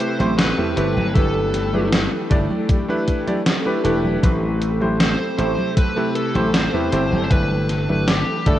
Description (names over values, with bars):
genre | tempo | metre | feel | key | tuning
vaporwave | 78 BPM | 4/4 | straight | G major | A4 = 440 Hz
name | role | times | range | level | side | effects
bluesy overdriven lead guitar | melody | 0.0-8.6 s | G4 to C5 | -26 LUFS | equal | distortion, tape echo
warm electric grand piano | accompaniment | 0.0-8.6 s | A3 to D5 | -22 LUFS | equal | lush chorus
soft string machine | sustained chords | 0.0-8.6 s | C3 to A4 | -28 LUFS | equal | ensemble chorus
gated 80s digital drum machine | drums | 0.0-8.6 s | congas, hi-hat, snare drum | -23 LUFS | equal | gated reverb, gated reverb snare, studio reverb
slap bass | bass | 0.2-8.6 s | E1 to E2 | -22 LUFS | equal | none
electronic kick drum | drums | 1.2-8.6 s | none | -17 LUFS | equal | studio reverb
room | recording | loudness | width
moderate lush hall reverb, RT60 2.8 s | rough home demo mix, cassette tape | -17 LUFS | side -12 dB against mid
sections
0.0-8.6 A section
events
none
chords
0.0 Am9; 1.2 G69; 4.2 Am9; 7.3 G69